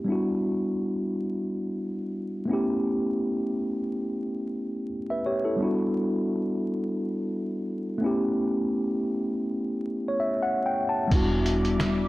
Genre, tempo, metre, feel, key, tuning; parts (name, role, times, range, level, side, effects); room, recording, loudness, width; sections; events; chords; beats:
lo-fi hip hop; 87 BPM; 4/4; swing 56% on 16ths; E dorian; A4 = 440 Hz
mellow tine electric piano; accompaniment; 0.0-12.1 s; G3 to A5; -25 LUFS; equal; medium stereo tremolo, cassette tape, low-pass filter
hollow soft pad; sustained chords; 11.3-12.1 s; G3 to D6; -32 LUFS; left 2 dB; ensemble chorus, low-pass filter
deep dub fingered electric bass; bass; 11.1-12.1 s; E1; -28 LUFS; equal
lo-fi sampler-style drum kit; drums; 11.1-12.0 s; crash cymbal, hi-hat, kick drum, snare drum; -27 LUFS; equal
finger snap; percussion; 11.8-12.0 s; -42 LUFS; right 4 dB
light reverb, digital ambience; vinyl crackle; -25 LUFS; side -18 dB against mid
0.1-11.1 A section
tine electric piano fill 9.7-11.1
0.1 Em7; 2.5 A7; 5.6 Em7; 8.0 A7; 11.1 Em7
| 0.08 0.77 1.46 2.15 | 2.84 3.53 4.22 4.91 | 5.60 6.29 6.98 7.67 | 8.36 9.05 9.73 10.43 | 11.12 11.80